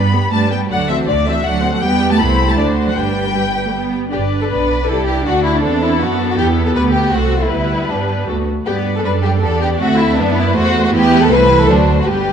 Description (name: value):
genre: quick classical-period movement for string orchestra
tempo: 159 BPM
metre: 3/4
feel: straight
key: G major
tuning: A4 = 440 Hz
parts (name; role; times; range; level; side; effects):
- rich studio violin section; melody; 0.0-12.3 s; A4 to B5; -22 LUFS; left 5 dB; none
- rich studio violin section; second line; 0.0-12.3 s; D4 to D5; -18 LUFS; left 2 dB; none
- rich studio viola section; accompaniment; 0.0-12.3 s; G3 to C5; -19 LUFS; right 2 dB; none
- rich studio double bass section; bass; 0.0-12.3 s; G1 to G2; -18 LUFS; right 3 dB; none
- warm studio cello section; bass; 0.0-12.3 s; D3 to D4; -22 LUFS; right 4 dB; none
room: moderate scoring stage reverb, RT60 1.7 s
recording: dark, warm production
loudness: -13 LUFS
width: side -8 dB against mid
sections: 0.0-4.1 A section; 4.1-12.3 B section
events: none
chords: 0.0 G; 0.7 D7; 1.8 Em; 2.2 Am/C; 2.6 D7; 3.0 G; 5.3 D7; 6.4 Em; 7.1 Am/C; 7.5 G/D; 8.3 D; 8.7 G; 9.8 D7; 10.9 Em; 11.3 Am/C; 11.7 D7